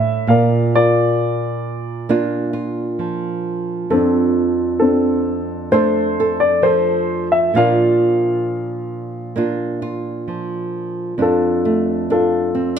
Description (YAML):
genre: acoustic folk-pop ballad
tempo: 66 BPM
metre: 4/4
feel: straight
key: F major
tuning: A4 = 441 Hz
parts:
  - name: warm upright piano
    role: melody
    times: 0.0-12.8 s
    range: C4 to F5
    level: -17 LUFS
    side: left 2 dB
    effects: none
  - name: nylon-string guitar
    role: accompaniment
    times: 0.0-12.8 s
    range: F2 to A4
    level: -19 LUFS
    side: right 3 dB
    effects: none
room: light reverb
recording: close, detailed microphones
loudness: -15 LUFS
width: side -8 dB against mid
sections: 0.0-11.2 A section; 11.2-12.8 A section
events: none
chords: 0.3 Bb; 3.9 F6; 7.5 Bb; 11.2 F6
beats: | 0.28 1.19 2.10 3.00 | 3.91 4.81 5.72 6.62 | 7.52 8.43 9.35 10.27 | 11.19 12.10